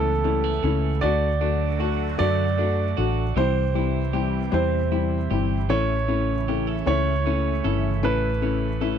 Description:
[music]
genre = six-eight pop ballad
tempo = 51 BPM (dotted quarters)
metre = 6/8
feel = straight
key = unclear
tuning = A4 = 440 Hz
[part]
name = warm concert grand piano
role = melody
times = 0.0-9.0 s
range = A4 to D5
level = -27 LUFS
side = right 5 dB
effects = none
[part]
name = felt-muted upright piano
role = accompaniment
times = 0.0-9.0 s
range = G3 to F#4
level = -27 LUFS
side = left 12 dB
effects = none
[part]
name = lush unison pad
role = sustained chords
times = 0.0-9.0 s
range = C3 to F#4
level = -33 LUFS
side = right 3 dB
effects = chorus, phaser
[part]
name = electric guitar at the edge of break-up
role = arpeggios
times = 0.0-9.0 s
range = E3 to A4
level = -32 LUFS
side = right 15 dB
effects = none
[part]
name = vintage muted fingered electric bass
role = bass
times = 0.0-9.0 s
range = G1 to F#2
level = -25 LUFS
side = right 1 dB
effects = none
[sound]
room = little or no reverb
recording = dry, close 1970s-style studio recording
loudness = -21 LUFS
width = side -8 dB against mid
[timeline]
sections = 0.0-9.0 A section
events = none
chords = 0.0 A; 1.0 D; 3.4 C; 5.7 A

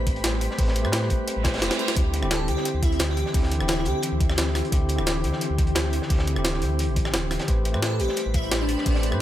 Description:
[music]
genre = liquid drum and bass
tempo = 174 BPM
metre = 4/4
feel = straight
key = unclear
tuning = A4 = 440 Hz
[part]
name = bell-like tine electric piano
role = accompaniment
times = 0.0-9.2 s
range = D3 to C5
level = -30 LUFS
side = equal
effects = dub echo
[part]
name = shimmering ambient pad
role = sustained chords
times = 0.0-9.2 s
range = E3 to B5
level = -32 LUFS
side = left 1 dB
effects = chorus, built-in reverb, sidechain pumping
[part]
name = sub bass with octave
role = bass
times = 0.0-9.2 s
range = D1 to A2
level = -26 LUFS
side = equal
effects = none
[part]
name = crunchy breakbeat drum kit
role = drums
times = 0.1-9.1 s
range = hi-hat, snare drum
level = -34 LUFS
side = equal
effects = high-pass filter on hats, high-pass filter on snare, high-pass filter on room
[part]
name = electronic kick drum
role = drums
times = 0.1-8.9 s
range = none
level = -24 LUFS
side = equal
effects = none
[part]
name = jungle sampler-style drum kit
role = drums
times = 0.1-9.2 s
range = hi-hat, rim click, snare drum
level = -28 LUFS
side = equal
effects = none
[part]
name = reverse cymbal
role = sound effects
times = 1.4-2.0 s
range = none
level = -32 LUFS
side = right 6 dB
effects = none
[part]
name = airy dreamy lead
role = melody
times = 2.3-4.0, 7.8-9.1 s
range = D4 to A4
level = -30 LUFS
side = equal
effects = chorus, tape echo
[sound]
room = digital ambience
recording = none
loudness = -21 LUFS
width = side -12 dB against mid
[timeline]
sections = 0.0-9.2 A section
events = reverse cymbal 1.4-2.0; drum fill 1.4-2.0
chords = 0.0 Am9; 2.0 D9sus4; 7.5 Am9

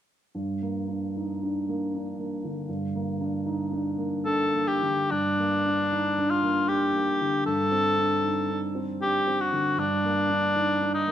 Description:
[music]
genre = classical, romantic duo for cor anglais and grand piano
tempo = 77 BPM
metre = 3/4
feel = rubato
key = G minor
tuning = A4 = 441 Hz
[part]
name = dark baby grand piano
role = accompaniment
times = 0.3-11.1 s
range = G2 to Eb4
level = -27 LUFS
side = right 1 dB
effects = none
[part]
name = warm cor anglais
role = melody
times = 4.3-11.1 s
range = D4 to A4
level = -24 LUFS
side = left 1 dB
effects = none
[sound]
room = wet recital hall reverb, RT60 1.4 s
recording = none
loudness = -24 LUFS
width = side -10 dB against mid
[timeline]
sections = 0.4-5.1 A section; 5.1-11.1 B section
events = none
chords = 0.4 Gm; 7.5 D5/G; 9.8 Gm

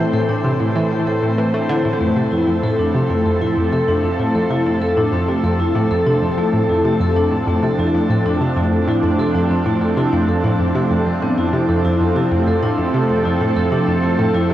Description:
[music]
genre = ambient, sequencer-driven space music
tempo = 96 BPM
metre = 4/4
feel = straight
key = unclear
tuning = A4 = 440 Hz
[part]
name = evolving wavetable pad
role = sustained chords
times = 0.0-14.5 s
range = F2 to C5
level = -20 LUFS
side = right 1 dB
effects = chorus, built-in reverb
[part]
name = vibraphone with medium hard mallets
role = arpeggios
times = 0.0-14.5 s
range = G3 to A4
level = -20 LUFS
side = left 2 dB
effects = auto-pan, tape echo
[part]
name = analog pluck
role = riff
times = 0.0-14.5 s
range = F2 to A3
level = -19 LUFS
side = equal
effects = chorus, tape echo
[sound]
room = wet shimmer reverb, RT60 7.8 s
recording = worn, warbling old tape, cassette tape, warbly pitch drift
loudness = -15 LUFS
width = side -13 dB against mid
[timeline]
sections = 0.0-14.5 A section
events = none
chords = 0.0 Am; 2.0 F

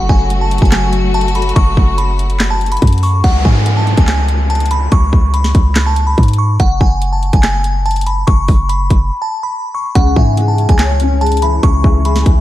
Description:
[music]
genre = hip hop, trap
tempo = 143 BPM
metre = 4/4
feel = half-time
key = C# minor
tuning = A4 = 440 Hz
[part]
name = glassy synth bell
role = melody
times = 0.0-12.4 s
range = F#5 to C#6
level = -18 LUFS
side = equal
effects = chorus, low-pass filter, diffuse ambient delay
[part]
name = warm studio string section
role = sustained chords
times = 0.0-3.2 s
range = C#3 to F#4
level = -20 LUFS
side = left 2 dB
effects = none
[part]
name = warm 808-style bass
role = bass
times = 0.0-12.4 s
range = F#1 to G#2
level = -14 LUFS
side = equal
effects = none
[part]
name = trap drum kit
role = drums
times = 0.1-12.4 s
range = handclaps, hi-hat, kick drum, snare drum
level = -13 LUFS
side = equal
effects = none
[part]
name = downlifter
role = sound effects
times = 3.2-6.6 s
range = none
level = -23 LUFS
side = equal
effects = none
[part]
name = felt-muted upright piano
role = accompaniment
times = 10.0-12.4 s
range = C#3 to C#5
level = -18 LUFS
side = left 6 dB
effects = ensemble chorus, low-pass filter
[sound]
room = light reverb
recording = none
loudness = -10 LUFS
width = side -14 dB against mid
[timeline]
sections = 0.0-3.2 A section; 3.2-12.4 B section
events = break 9.1-10.0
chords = 0.0 F#m; 3.2 C#5; 6.6 F#5; 10.0 C#m

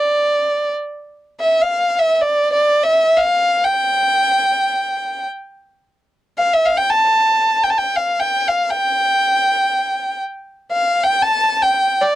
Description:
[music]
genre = Turkish makam ensemble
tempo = free time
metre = none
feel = none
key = unclear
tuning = A4 = 440 Hz
[part]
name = clear violin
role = solo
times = 0.0-12.2 s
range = D5 to A5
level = -14 LUFS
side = equal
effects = none
[sound]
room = little or no reverb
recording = dry, gritty hardware recording, cassette tape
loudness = -14 LUFS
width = side -14 dB against mid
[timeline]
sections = 0.0-12.2 A section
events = none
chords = none

